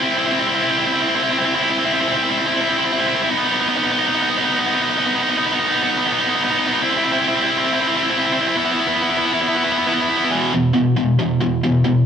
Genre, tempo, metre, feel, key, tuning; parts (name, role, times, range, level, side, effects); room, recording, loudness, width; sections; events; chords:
metal; 137 BPM; 4/4; straight; A4 = 440 Hz
tight distorted guitar; solo; 0.0-12.0 s; E2 to E4; -15 LUFS; equal; distortion
moderate stone room reverb, RT60 1.1 s; band playing live in one room; -16 LUFS; side -7 dB against mid
0.0-10.3 A section; 10.3-12.1 B section
0.0 C; 3.3 B; 6.8 C; 8.6 E5